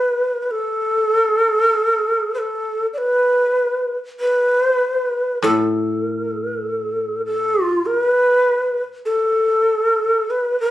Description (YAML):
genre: japanese traditional, Japanese chamber music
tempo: 49 BPM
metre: 4/4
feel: rubato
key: unclear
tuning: A4 = 440 Hz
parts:
  - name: breathy hollow shakuhachi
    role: melody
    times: 0.0-10.7 s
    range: A4 to D5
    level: -16 LUFS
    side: equal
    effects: none
  - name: koto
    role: accompaniment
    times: 5.4-8.8 s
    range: A2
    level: -22 LUFS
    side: left 1 dB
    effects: none
room: light reverb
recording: recorded on a phone in the room, studio reverb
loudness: -16 LUFS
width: side -14 dB against mid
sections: 0.0-10.7 A section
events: none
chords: none